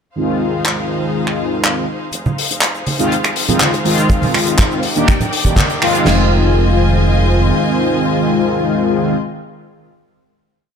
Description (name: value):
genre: nu-disco, nu disco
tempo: 122 BPM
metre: 4/4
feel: straight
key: F dorian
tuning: A4 = 438 Hz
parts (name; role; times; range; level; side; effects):
- mellow synth brass; accompaniment; 0.2-9.2 s; Eb3 to G4; -16 LUFS; left 1 dB; chorus, sidechain pumping, digital delay
- rich studio string section; sustained chords; 0.2-9.2 s; Eb4 to Ab5; -24 LUFS; left 1 dB; sidechain pumping, low-pass filter
- damped 70s drum kit; drums; 0.7-6.0 s; finger snaps, handclaps, hi-hat; -18 LUFS; left 1 dB; small room ambience
- fingered electric bass with an envelope filter; bass; 2.1-7.5 s; F1 to Ab2; -18 LUFS; equal; high-pass filter
- tube shaker and congas; percussion; 2.1-6.0 s; none; -21 LUFS; right 3 dB; none
- damped 70s drum kit; drums; 4.1-6.2 s; crash cymbal, kick drum, snare drum; -16 LUFS; equal; small room ambience
room: moderate lush hall reverb, RT60 1.5 s, studio reverb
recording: none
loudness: -13 LUFS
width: side -7 dB against mid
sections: 0.2-2.1 intro; 2.1-6.1 build; 6.1-10.0 final chord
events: build-up 2.1-6.1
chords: 0.2 Fm7; 3.9 Ab6; 4.8 Ebmaj7; 6.1 Fm7